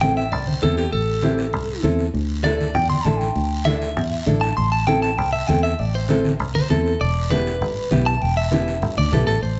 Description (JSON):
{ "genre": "latin, cumbia", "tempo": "198 BPM", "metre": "4/4", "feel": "straight", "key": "A minor", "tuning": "A4 = 440 Hz", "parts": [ { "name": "clean electric guitar", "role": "melody", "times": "0.0-9.6 s", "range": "G4 to C6", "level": "-26 LUFS", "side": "equal", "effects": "spring reverb, slapback echo" }, { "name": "nylon-string guitar", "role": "accompaniment", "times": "0.0-9.3 s", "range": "B3 to A4", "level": "-26 LUFS", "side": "equal", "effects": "none" }, { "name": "fingered electric bass", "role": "bass", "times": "0.0-9.6 s", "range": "E1 to E2", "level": "-25 LUFS", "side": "equal", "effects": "none" }, { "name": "congas", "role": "percussion", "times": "0.0-9.6 s", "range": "none", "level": "-27 LUFS", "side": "equal", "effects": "none" }, { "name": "guiro", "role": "percussion", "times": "0.0-9.6 s", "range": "none", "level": "-40 LUFS", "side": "equal", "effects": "none" } ], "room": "moderate studio reverb, RT60 0.7 s", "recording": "heard from further back in the room, nothing above 8.0 kHz", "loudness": "-21 LUFS", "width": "mono", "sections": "0.0-9.4 A section", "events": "clean electric guitar solo 0.0-9.4", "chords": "0.0 Am; 2.1 Dsus2; 4.6 Am; 7.0 Em" }